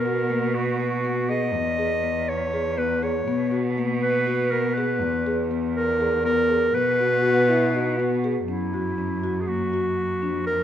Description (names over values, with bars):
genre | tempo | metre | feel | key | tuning
contemporary instrumental, chamber music in an uneven meter | 242 BPM (eighths) | 7/8 | straight | B major | A4 = 440 Hz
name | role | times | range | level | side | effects
clear clarinet | melody | 0.0-10.6 s | E4 to D#5 | -24 LUFS | equal | none
marimba with soft mallets | arpeggios | 0.0-10.6 s | A#3 to G#4 | -27 LUFS | left 4 dB | none
clear cello | bass | 0.0-10.6 s | E2 to B2 | -27 LUFS | right 3 dB | none
warm French horn | second line | 7.2-8.5 s | D#4 to F#4 | -25 LUFS | left 2 dB | none
room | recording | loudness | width
moderate recital hall reverb, RT60 1.4 s | none | -21 LUFS | side -10 dB against mid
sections
0.0-8.5 A section; 8.5-10.6 B section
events
none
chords
0.0 B5; 1.6 E; 3.3 B5; 5.0 E; 6.8 B5; 8.5 F#7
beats
0.06 0.31 0.56 0.81 1.05 1.30 | 1.55 1.80 2.05 2.29 2.54 2.79 3.04 | 3.28 3.53 3.78 4.03 4.28 4.52 4.77 | 5.02 5.27 5.51 5.76 6.01 6.26 6.51 | 6.75 7.00 7.25 7.50 7.75 8.00 8.24 | 8.49 8.74 8.99 9.24 9.48 9.73 9.98 | 10.23 10.48